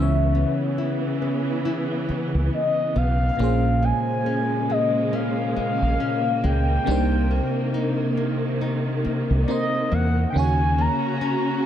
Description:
contemporary R&B; 69 BPM; 4/4; swing 58% on 16ths; Bb minor; A4 = 440 Hz
mellow horn-like synth lead; melody; 0.0-11.7 s; D5 to Bb5; -26 LUFS; left 1 dB; chorus, phaser, ping-pong delay
FM electric piano; accompaniment; 0.0-11.7 s; Bb2 to Db5; -28 LUFS; equal; chorus, phaser
dark studio string section; sustained chords; 0.0-11.7 s; C3 to Gb4; -28 LUFS; right 3 dB
nylon-string guitar; arpeggios; 0.0-11.7 s; Bb2 to Fb4; -27 LUFS; left 4 dB
deep dub fingered electric bass; bass; 0.0-10.9 s; Bb1 to E2; -21 LUFS; equal
light reverb, studio reverb; dark, warm production; -20 LUFS; side -10 dB against mid
0.0-3.4 A section; 3.4-11.7 A section
0.0 Dbm7; 3.4 Bbm7; 6.9 Cm7; 10.3 Ebm7

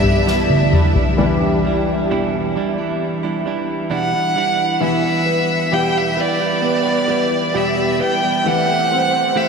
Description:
pop ballad; 66 BPM; 4/4; straight; E minor; A4 = 440 Hz
warm violin; melody; 0.0-9.5 s; D5 to G5; -20 LUFS; right 1 dB; ping-pong delay
clear concert grand piano; accompaniment; 0.0-9.5 s; E3 to C5; -21 LUFS; left 2 dB; ensemble chorus
ethereal airy pad; sustained chords; 0.0-1.2 s; G4 to E5; -25 LUFS; left 2 dB; ensemble chorus, built-in reverb, tremolo
direct-recorded clean electric guitar; arpeggios; 0.0-9.5 s; E2 to G4; -21 LUFS; right 4 dB; ping-pong delay
fingered electric bass; bass; 0.0-0.7 s; G2; -21 LUFS; left 1 dB
soft-mallet drum kit; drums; 0.0-1.2 s; snare drum, toms; -19 LUFS; equal
wet huge ambient reverb, RT60 7.8 s; dreamy mix soaked in reverb; -15 LUFS; side -5 dB against mid
0.0-1.2 A section; 1.2-4.8 B section; 4.8-9.5 C section
drum fill 0.3-1.2; grand piano solo 1.2-4.8
0.0 Em7; 4.8 Em; 8.4 Am7/E

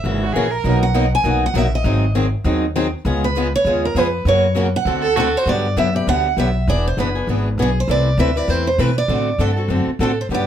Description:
acoustic string swing (jazz manouche); 199 BPM; 4/4; swing 58% on 8ths; B major, G major from 5.5 s; A4 = 441 Hz
picked steel-string acoustic guitar; melody; 0.0-10.5 s; G#4 to G#5; -20 LUFS; right 2 dB
picked swing-style acoustic guitar; accompaniment; 0.0-10.5 s; B2 to B4; -22 LUFS; left 3 dB
upright bass; bass; 0.0-10.5 s; E1 to B2; -20 LUFS; equal
warm violin; second line; 0.2-0.7, 5.0-5.5 s; F#4 to A#4; -22 LUFS; right 5 dB
picked acoustic archtop guitar; accompaniment; 0.7-10.5 s; B2 to B4; -26 LUFS; right 6 dB
light reverb; -15 LUFS; side -10 dB against mid
0.0-5.5 A section; 5.5-10.5 B section
0.0 F#7; 0.6 Bmaj7; 1.9 G#7; 3.1 C#7; 4.3 F#; 4.9 D7; 5.5 Gmaj7; 6.7 E7; 7.9 Amadd9; 9.1 D7

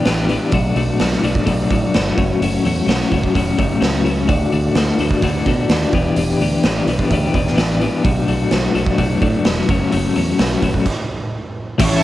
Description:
indie rock; 128 BPM; 4/4; straight; A4 = 441 Hz
twelve-string electric guitar; riff; 0.0-12.0 s; A2 to G4; -17 LUFS; left 4 dB; tremolo, cassette tape
growling fingered electric bass; bass; 0.1-12.0 s; E1 to B2; -22 LUFS; right 2 dB; overdrive
raw garage drum kit; drums; 0.1-11.9 s; crash cymbal, hi-hat, kick drum, snare drum; -19 LUFS; right 2 dB; cassette tape
brassy analog pad; sustained chords; 11.8-12.0 s; E4 to C#6; -18 LUFS; right 2 dB; chorus, tremolo, cassette tape
light reverb, small room ambience; home recording on cassette; -15 LUFS; side -14 dB against mid
0.0-11.8 A section
stop 10.9-11.8
0.0 Em7; 0.5 Bm7; 2.2 F#m; 4.3 D; 5.9 Em7; 8.0 Bm7; 9.7 F#m

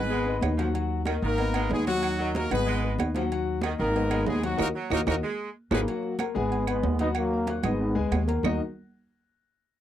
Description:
latin, salsa; 187 BPM; 4/4; straight; Eb minor; A4 = 439 Hz
bright horn section; melody; 0.0-5.8 s; Gb3 to Cb5; -28 LUFS; equal
warm concert grand piano; accompaniment; 0.0-8.6 s; Eb3 to Gb6; -31 LUFS; left 7 dB
upright bass; bass; 0.0-8.6 s; Ab1 to Eb2; -29 LUFS; equal
clear saxophone section; second line; 0.1-5.8 s; Eb3 to Ab3; -35 LUFS; right 5 dB
congas; percussion; 0.1-8.5 s; -34 LUFS; right 2 dB
claves; percussion; 0.4-8.5 s; -39 LUFS; right 22 dB
timbales and agogo bells; percussion; 0.4-8.5 s; -35 LUFS; right 9 dB
mellow trombone section; melody; 5.7-8.6 s; Gb3 to Eb4; -29 LUFS; equal
light reverb; dry, close 1970s-style studio recording; -24 LUFS; side -11 dB against mid
0.0-5.9 A section; 5.9-8.4 B section; 8.4-9.7 C section
drum fill 4.6-5.9; band accent 4.6-5.9
0.1 Abm; 0.7 Ebm; 1.4 Abm; 2.0 Ebm; 2.7 Abm; 3.3 Ebm; 3.9 Abm; 4.6 Ebm; 5.2 Abm; 5.9 Abm9; 6.5 Abm; 7.2 Ebm; 7.8 Abm; 8.4 Eb5

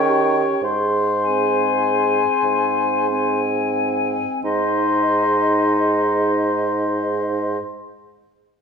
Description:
classical, slow romantic movement for wind quintet; 28-38 BPM (dotted quarters); 6/8; rubato; Ab major; A4 = 440 Hz
silver concert flute; melody; 0.0-7.6 s; Eb5 to Ab5; -23 LUFS; left 10 dB
warm oboe; second line; 0.0-7.6 s; C5 to Db5; -22 LUFS; left 2 dB
clear clarinet; accompaniment; 0.0-7.6 s; C4 to Eb4; -26 LUFS; right 1 dB
dark French horn; accompaniment; 0.0-7.6 s; G4 to Ab4; -28 LUFS; right 3 dB
warm bassoon; bass; 0.0-7.6 s; Ab2 to Eb3; -22 LUFS; right 4 dB
wet recital hall reverb, RT60 1.5 s; recorded in a church or concert hall; -17 LUFS; side -6 dB against mid
0.0-4.4 A section; 4.4-8.2 B section
slowing down 0.0-4.4
0.0 Eb7; 0.6 Ab

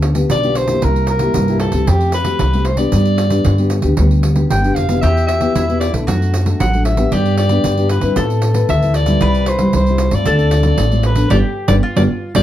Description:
samba and choro; 114 BPM; 4/4; straight; A4 = 440 Hz
nylon-string guitar; accompaniment; 0.0-12.4 s; G2 to B4; -18 LUFS; left 1 dB
upright bass; bass; 0.0-12.4 s; F1 to A2; -16 LUFS; equal
pandeiro; percussion; 0.0-12.4 s; -22 LUFS; right 4 dB
mellow soprano saxophone; melody; 0.3-12.4 s; G4 to G5; -19 LUFS; left 1 dB
mandolin; second line; 5.0-12.4 s; E4 to B4; -24 LUFS; left 2 dB
light reverb; dark, warm production; -12 LUFS; side -12 dB against mid
0.0-12.4 A section
band accent 11.3-12.4
0.0 G7/D; 0.8 C7; 1.9 Fadd9; 2.9 G; 5.0 Em; 6.1 D/F#; 7.1 G; 8.2 Amadd9; 9.2 C; 10.3 Dm7; 11.3 G7

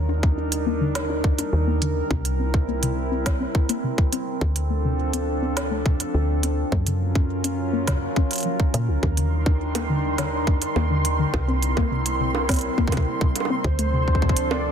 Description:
IDM; 104 BPM; 4/4; straight; Eb lydian; A4 = 440 Hz
warbly tape-like pad; sustained chords; 0.0-14.7 s; F3 to Bb4; -27 LUFS; right 1 dB; chorus, built-in reverb
woody FM bass; bass; 0.0-14.7 s; C2 to Bb2; -25 LUFS; equal
soft round pluck; arpeggios; 0.1-14.6 s; C3 to F4; -28 LUFS; left 3 dB; chorus, dub echo
electronic kick drum; drums; 0.2-14.4 s; -21 LUFS; equal
organic electronic drum kit; drums; 0.5-14.6 s; bongos, hi-hat, snare drum; -29 LUFS; right 3 dB; ping-pong delay
flickering grainy texture; texture; 9.3-14.7 s; C6; -30 LUFS; right 2 dB; built-in reverb, sidechain pumping
warm velvety synth lead; melody; 13.6-14.7 s; C5 to D5; -27 LUFS; right 2 dB; chorus
moderate echo chamber reverb, RT60 2.2 s; dense, heavily limited modern master; -20 LUFS; side -8 dB against mid
0.0-14.7 A section
filter sweep on synth arpeggio sound 0.0-14.7
0.0 Ebmaj7; 2.1 C7; 4.4 Dm7; 6.7 Gbmaj7; 9.0 Ebmaj7; 11.3 C7; 13.6 Dm7

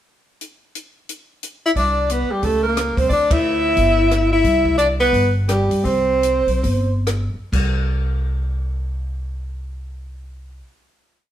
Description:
jazz, small-group swing and bop; 124-179 BPM; 4/4; swing 62% on 8ths; C major; A4 = 440 Hz
compact cocktail drum kit; drums; 0.4-7.7 s; crash cymbal, hi-hat, kick drum, ride cymbal, rim click; -25 LUFS; equal
breathy tenor saxophone; melody; 1.7-7.1 s; G3 to E4; -18 LUFS; left 2 dB
clear alto saxophone; second line; 1.8-7.1 s; G4 to E5; -22 LUFS; right 3 dB
upright bass; bass; 1.8-10.6 s; G1 to G2; -21 LUFS; equal
wet stone room reverb, RT60 1.0 s; band playing live in one room; -16 LUFS; side -11 dB against mid
0.4-1.8 pickup bar; 1.8-7.5 A section; 7.5-11.3 final note
band accent 3.3; slowing down 4.4-7.5
0.4 N.C.; 1.8 Csus2; 2.4 Bbmadd9; 3.1 Dsus2; 3.8 Em/G; 4.4 Cmaj7; 7.5 N.C.

